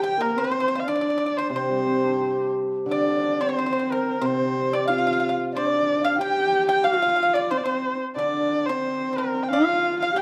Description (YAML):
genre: chinese traditional, Chinese chamber ensemble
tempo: 91 BPM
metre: 2/4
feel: rubato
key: C shang mode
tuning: A4 = 440 Hz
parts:
  - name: dark erhu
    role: melody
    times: 0.0-10.2 s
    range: Bb4 to G5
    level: -27 LUFS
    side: equal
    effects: none
  - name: bright low xiao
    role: second line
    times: 0.0-10.2 s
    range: Bb4 to G5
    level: -34 LUFS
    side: equal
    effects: none
  - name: pipa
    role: second line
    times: 0.0-10.2 s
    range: Bb4 to G5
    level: -32 LUFS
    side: equal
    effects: none
  - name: warm horsehead fiddle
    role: second line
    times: 0.0-10.2 s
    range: Bb3 to G4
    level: -28 LUFS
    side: equal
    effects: none
  - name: hammered dulcimer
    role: accompaniment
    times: 0.0-10.2 s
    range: C3 to G4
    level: -31 LUFS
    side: equal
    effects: none
room: moderate recital hall reverb, RT60 1.5 s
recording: dark, warm production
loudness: -23 LUFS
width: mono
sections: 0.0-2.9 A section; 2.9-10.2 B section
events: none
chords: none